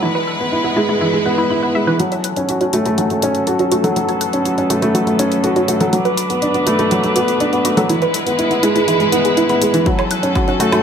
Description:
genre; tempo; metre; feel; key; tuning
piano and strings electronica; 122 BPM; 4/4; straight; F# minor; A4 = 438 Hz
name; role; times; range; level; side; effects
bright string quartet; sustained chords; 0.0-10.8 s; F#3 to B4; -21 LUFS; left 1 dB; sidechain pumping, low-pass filter
analog pluck; arpeggios; 0.0-10.8 s; E4 to F#6; -22 LUFS; right 1 dB; chorus, sidechain pumping, ping-pong delay
dark upright piano; riff; 0.0-10.8 s; E3 to F#4; -16 LUFS; equal; ping-pong delay
electronic hi-hat and woodblock; drums; 2.0-10.8 s; none; -24 LUFS; left 2 dB; none
electronic kick drum; drums; 9.9-10.5 s; none; -19 LUFS; equal; none
room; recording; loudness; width
moderate recital hall reverb, RT60 1.6 s, studio reverb; none; -14 LUFS; side -7 dB against mid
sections
0.0-2.0 A section; 2.0-10.8 B section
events
filter sweep on upright piano 0.0-2.0; filter sweep on synth arpeggio sound 0.0-2.0; build-up 2.0-10.8; filter sweep on string quartet 2.0-10.8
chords
0.0 E; 2.0 F#m; 5.9 D6; 7.9 E; 9.9 F#m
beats
| 0.03 0.52 1.01 1.50 | 2.00 2.49 2.98 3.47 | 3.96 4.46 4.95 5.44 | 5.93 6.42 6.91 7.41 | 7.90 8.39 8.88 9.37 | 9.87 10.36

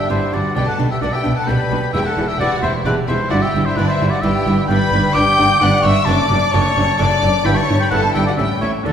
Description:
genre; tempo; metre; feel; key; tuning
classical, baroque-style concerto movement with solo episodes; 130 BPM; 3/4; straight; D major from 4.7 s; A4 = 440 Hz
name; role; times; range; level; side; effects
rich chamber violin section; melody; 0.0-8.9 s; D5 to G6; -24 LUFS; left 3 dB; none
warm oboe; melody; 0.0-8.9 s; A4 to D6; -20 LUFS; left 1 dB; none
rich chamber violin section; second line; 0.0-8.9 s; D4 to G5; -23 LUFS; left 2 dB; none
lute; accompaniment; 0.0-8.9 s; E2 to A4; -25 LUFS; equal; none
rich chamber viola section; accompaniment; 0.1-8.9 s; C#4 to E4; -26 LUFS; left 1 dB; none
rich studio double bass section; bass; 0.1-8.9 s; E1 to D2; -21 LUFS; right 1 dB; none
warm symphonic cello section; bass; 0.1-8.9 s; E2 to D3; -21 LUFS; right 2 dB; none
room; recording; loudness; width
wet recital hall reverb, RT60 1.6 s; heard from further back in the room; -14 LUFS; side -8 dB against mid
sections
0.0-8.9 A section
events
none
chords
0.0 G; 0.6 G/B; 1.9 Em; 3.3 Em/G; 4.7 G; 6.1 D/F#; 7.5 Em/G; 8.4 A7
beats
0.10 | 0.56 1.02 1.48 | 1.94 2.40 2.86 | 3.32 3.78 4.24 | 4.70 5.16 5.62 | 6.08 6.54 7.00 | 7.46 7.92 8.38 | 8.85

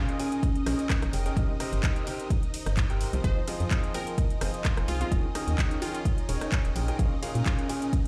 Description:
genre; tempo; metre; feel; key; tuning
piano house; 128 BPM; 4/4; swing 54% on 16ths; F minor; A4 = 439 Hz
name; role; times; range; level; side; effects
analog string pad; sustained chords; 0.0-8.1 s; Eb4 to Eb5; -44 LUFS; equal; ensemble chorus, sidechain pumping
clear concert grand piano; riff; 0.0-7.9 s; Bb2 to Ab5; -37 LUFS; equal; sidechain pumping
warbly tape-like pad; texture; 0.0-8.1 s; Db4 to Bb5; -39 LUFS; equal; chorus, built-in reverb, sidechain pumping
house drum kit; drums; 0.1-8.1 s; handclaps, hi-hat, ride cymbal, rim click; -39 LUFS; equal; none
electronic kick drum; drums; 0.4-8.0 s; none; -29 LUFS; equal; overdrive
organ-like FM bass; bass; 0.7-7.4 s; Eb1 to Bb2; -31 LUFS; equal; tube saturation, sidechain pumping
glassy wavetable pluck; melody; 3.2-6.0 s; F4 to C5; -41 LUFS; equal; chorus, cassette tape, tape echo
room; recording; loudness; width
light reverb; played on a big sound system in a bare room, large studio reverb; -28 LUFS; mono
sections
0.0-8.1 A section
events
none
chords
0.0 Bbm7; 1.4 Cm7; 3.2 Fm7; 5.1 Eb7sus4; 6.8 Bbm7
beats
0.43 0.90 | 1.37 1.83 2.30 2.77 | 3.24 3.71 4.18 4.65 | 5.12 5.58 6.05 6.52 | 6.99 7.46 7.93

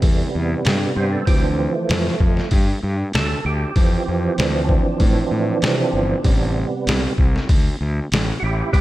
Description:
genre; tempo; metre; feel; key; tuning
blues rock power trio and southern rock; 96 BPM; 4/4; straight; unclear; A4 = 440 Hz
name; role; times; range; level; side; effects
percussive tonewheel organ; sustained chords; 0.0-8.8 s; C3 to C5; -22 LUFS; right 3 dB; slow rotary speaker, overdrive, chorus vibrato
fuzz fingered electric bass; bass; 0.0-8.8 s; G1 to C3; -21 LUFS; equal; overdrive
trip hop sampler-style drum kit; drums; 0.0-8.8 s; hi-hat, kick drum, snare drum; -18 LUFS; equal; none
room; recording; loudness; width
light reverb; none; -16 LUFS; side -16 dB against mid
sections
0.0-8.8 A section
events
tonewheel organ solo 0.0-8.8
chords
0.0 Am7; 1.3 Dm7; 6.2 Am7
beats
0.02 0.65 | 1.27 1.90 2.52 3.14 | 3.76 4.38 5.01 5.63 | 6.25 6.87 7.49 8.11 | 8.73

